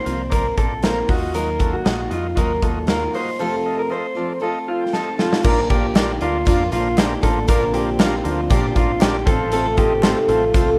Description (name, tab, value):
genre	jangly indie pop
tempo	117 BPM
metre	4/4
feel	straight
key	Bb major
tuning	A4 = 440 Hz
part	picked steel-string acoustic guitar	accompaniment	0.0-10.8 s	F2 to A4	-27 LUFS	equal	none
part	electric guitar through a small old amp	arpeggios	0.0-10.8 s	F4 to C5	-25 LUFS	equal	tape echo
part	overdriven combo organ	accompaniment	0.1-10.7 s	C4 to A5	-29 LUFS	equal	none
part	deep dub picked electric bass	bass	0.1-10.8 s	A1 to Bb2	-29 LUFS	equal	none
part	big rock drum kit	drums	0.1-10.7 s	crash cymbal, hi-hat, kick drum, snare drum	-22 LUFS	equal	none
part	lush unison pad	sustained chords	5.4-10.8 s	C3 to C4	-34 LUFS	equal	none
part	group handclap	percussion	6.0-10.2 s	none	-40 LUFS	equal	none
room	small room ambience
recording	rough home demo mix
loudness	-19 LUFS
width	mono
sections	0.0-5.5 A section; 5.5-10.8 B section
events	transistor combo organ fill 4.4-5.5; drum fill 4.9-5.5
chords	0.0 Bbadd9; 1.1 Ebmadd9; 3.4 F; 5.5 Bb; 9.3 F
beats	0.32 0.84 | 1.35 1.86 2.38 2.89 | 3.40 3.92 4.43 4.94 | 5.45 5.96 6.47 6.98 | 7.49 8.00 8.51 9.02 | 9.53 10.04 10.54